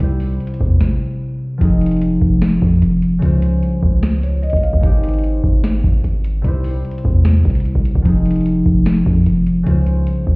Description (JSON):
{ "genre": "hip hop, trap", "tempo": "149 BPM", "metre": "4/4", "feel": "half-time", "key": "F minor", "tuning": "A4 = 440 Hz", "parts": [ { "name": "concert harp", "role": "accompaniment", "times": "0.0-10.4 s", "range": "C3 to F5", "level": "-17 LUFS", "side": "equal", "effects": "none" }, { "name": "warm 808-style bass", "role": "bass", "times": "0.0-10.4 s", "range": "F1 to F2", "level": "-17 LUFS", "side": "equal", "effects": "none" }, { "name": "booming analog drum machine", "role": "drums", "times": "0.0-10.4 s", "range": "hi-hat, kick drum, snare drum", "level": "-16 LUFS", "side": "equal", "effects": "none" } ], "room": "little or no reverb", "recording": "heard muffled through a wall, stone room reverb, EQ", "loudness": "-13 LUFS", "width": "side -31 dB against mid", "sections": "0.0-1.6 A section; 1.6-10.4 B section", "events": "none", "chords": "0.0 C; 1.6 Fm7; 3.2 Dbmaj7; 4.8 Abmaj7; 6.4 C; 8.1 Fm7; 9.7 Dbmaj7" }